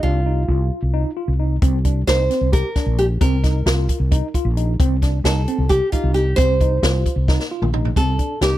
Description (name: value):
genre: progressive instrumental, band music in an uneven meter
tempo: 265 BPM (eighths)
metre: 7/8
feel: straight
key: C dorian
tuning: A4 = 437 Hz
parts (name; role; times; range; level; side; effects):
- nylon-string guitar; melody; 0.0-8.6 s; F4 to C5; -22 LUFS; right 1 dB; none
- tine electric piano; arpeggios; 0.0-8.6 s; C4 to G4; -26 LUFS; equal; overdrive, fast stereo tremolo
- woody fretless electric bass; bass; 0.0-8.6 s; Bb1 to C2; -18 LUFS; equal; none
- open jazz drum kit; drums; 1.6-8.5 s; hi-hat, kick drum, snare drum, toms; -20 LUFS; equal; none
room: studio reverb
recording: dry, close 1970s-style studio recording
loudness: -16 LUFS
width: side -14 dB against mid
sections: 0.0-8.0 A section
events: drum fill 7.3-8.0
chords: 0.0 Ebsus2/C; 1.6 Cm7; 4.8 Eb/C; 6.4 Cm7; 8.0 Cmadd9